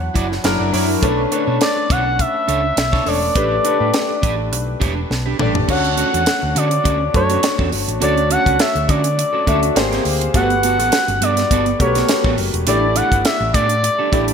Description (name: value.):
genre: polished 1980s jazz-funk pop.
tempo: 103 BPM.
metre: 4/4.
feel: swing 54% on 16ths.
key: D major.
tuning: A4 = 441 Hz.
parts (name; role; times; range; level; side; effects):
expressive portamento lead; melody; 0.0-14.3 s; C#5 to F#5; -19 LUFS; equal; chorus, ping-pong delay.
warm concert grand piano; accompaniment; 0.0-14.3 s; F#3 to E5; -21 LUFS; left 3 dB; wide subtle chorus.
electric guitar at the edge of break-up; riff; 0.0-14.3 s; B3 to D5; -24 LUFS; right 7 dB; wide subtle chorus.
hollow-body short-scale fingered electric bass; bass; 0.0-14.3 s; E1 to D3; -22 LUFS; equal; none.
tight funk drum kit; drums; 0.2-14.3 s; crash cymbal, hi-hat, kick drum, snare drum, toms; -20 LUFS; equal; none.
room: moderate lush hall reverb, RT60 1.6 s, studio reverb.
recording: bright 1980s-style digital production.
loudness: -14 LUFS.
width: side -7 dB against mid.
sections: 0.0-5.7 A section; 5.7-14.3 B section.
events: drum fill 5.1-5.7.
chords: 0.4 F#7b13; 1.0 Bm9; 3.4 A9sus4; 5.7 Dmaj7; 9.8 G#maj9; 10.3 Gmaj9; 12.7 A7sus4.